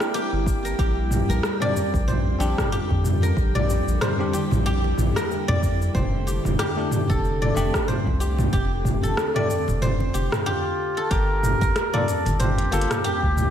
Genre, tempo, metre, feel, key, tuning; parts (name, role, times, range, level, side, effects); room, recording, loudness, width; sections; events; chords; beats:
organic downtempo; 93 BPM; 4/4; swing 57% on 16ths; G dorian; A4 = 443 Hz
bell-like tine electric piano; accompaniment; 0.0-13.0 s; A3 to A4; -32 LUFS; left 2 dB; sidechain pumping, tape echo, slapback echo
bowed-like drone; sustained chords; 0.0-13.5 s; C3 to F4; -31 LUFS; equal; built-in reverb, sidechain pumping
guzheng; arpeggios; 0.0-13.5 s; G4 to D5; -27 LUFS; left 1 dB; tape echo, slapback echo
deep house drum kit; drums; 0.0-13.5 s; hi-hat, rim click, shaker, toms; -25 LUFS; equal; overdrive
drifting glass-harmonics texture; texture; 0.0-10.5 s; G5; -40 LUFS; right 3 dB; chorus, built-in reverb
round analog bass; bass; 0.3-13.5 s; F1 to F2; -24 LUFS; equal
electronic kick drum; drums; 0.5-13.3 s; -26 LUFS; equal
congas; percussion; 1.3-13.3 s; -34 LUFS; left 2 dB
trumpet with cup mute; melody; 10.5-13.5 s; F4 to Bb4; -27 LUFS; right 1 dB; vintage 12-bit sampler grit, tape echo, slapback echo
moderate concert hall reverb, RT60 1.8 s; big arena sound; -20 LUFS; side -9 dB against mid
0.0-11.1 A section; 11.1-13.5 B section
0.0 C7; 0.8 Bb6; 5.9 F6; 11.1 Gm7
0.14 | 0.79 1.43 2.08 2.72 | 3.37 4.01 4.66 5.30 | 5.95 6.59 7.24 7.88 | 8.53 9.17 9.82 10.46 | 11.11 11.76 12.40 13.04